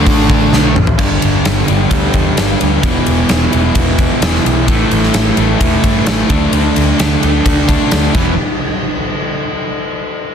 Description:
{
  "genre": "hard rock",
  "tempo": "130 BPM",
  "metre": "4/4",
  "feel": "straight",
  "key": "unclear",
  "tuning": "A4 = 438 Hz",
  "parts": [
    { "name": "cranked stack guitar", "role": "riff", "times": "0.0-8.3 s", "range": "E2 to D4", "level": "-17 LUFS", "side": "left 12 dB", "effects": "overdrive" },
    { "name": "distorted electric guitar", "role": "riff", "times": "0.0-0.8 s", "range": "D3 to F#4", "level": "-17 LUFS", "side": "equal", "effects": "overdrive" },
    { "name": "sludgy distorted guitar", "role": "riff", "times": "0.0-8.3 s", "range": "E2 to D4", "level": "-16 LUFS", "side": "right 10 dB", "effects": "overdrive" },
    { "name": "picked electric bass", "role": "bass", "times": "0.0-8.4 s", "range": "E1 to G2", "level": "-16 LUFS", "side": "equal", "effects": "none" },
    { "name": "huge arena drum kit", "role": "drums", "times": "0.1-8.3 s", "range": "crash cymbal, hi-hat, kick drum, ride cymbal, snare drum, toms", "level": "-15 LUFS", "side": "equal", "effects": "none" }
  ],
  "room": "small room reverb",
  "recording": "dense, heavily limited modern master",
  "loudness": "-11 LUFS",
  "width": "side -7 dB against mid",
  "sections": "1.0-8.4 A section; 8.4-10.2 B section",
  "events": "drum fill 0.5-1.0",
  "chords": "0.0 D; 1.0 G5; 2.8 E5; 4.7 A5; 6.3 D5; 8.1 E5; 8.4 N.C.",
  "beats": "0.07 0.53 | 0.99 1.45 1.91 2.37 | 2.84 3.30 3.76 4.22 | 4.68 5.14 5.61 6.07 | 6.53 6.99 7.45 7.92"
}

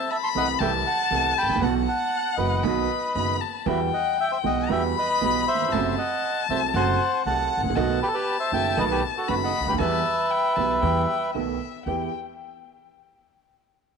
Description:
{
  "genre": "tango",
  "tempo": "118 BPM",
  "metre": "4/4",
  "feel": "rubato",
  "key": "E harmonic minor",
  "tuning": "A4 = 440 Hz",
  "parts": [
    { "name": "bandoneon", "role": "melody", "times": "0.0-11.3 s", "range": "F#4 to C6", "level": "-25 LUFS", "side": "right 1 dB", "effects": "none" },
    { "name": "warm violin", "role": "second line", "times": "0.0-12.1 s", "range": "E5 to B5", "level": "-27 LUFS", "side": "left 13 dB", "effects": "none" },
    { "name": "warm upright piano", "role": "accompaniment", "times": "0.3-12.1 s", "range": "F#1 to A4", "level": "-28 LUFS", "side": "right 10 dB", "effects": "none" },
    { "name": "upright bass", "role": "bass", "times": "0.4-12.1 s", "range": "F#1 to E2", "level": "-30 LUFS", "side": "left 1 dB", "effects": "none" }
  ],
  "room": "moderate echo chamber reverb, RT60 2.1 s",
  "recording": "1960s-style stereo with parts hard left and right",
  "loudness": "-21 LUFS",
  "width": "side -5 dB against mid",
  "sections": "0.0-11.9 A section; 11.9-13.9 B section",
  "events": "none",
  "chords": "0.0 Am/C; 1.6 Bsus4; 2.6 B; 3.7 Emadd9; 5.7 F#dim; 7.8 B7; 9.8 Em; 11.3 B7; 11.9 Em",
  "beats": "0.10 0.60 1.10 | 1.61 2.12 2.64 3.15 | 3.67 4.18 4.70 5.21 | 5.72 6.23 6.74 7.25 | 7.76 8.27 8.77 9.28 | 9.79 10.30 10.82 11.34 | 11.86"
}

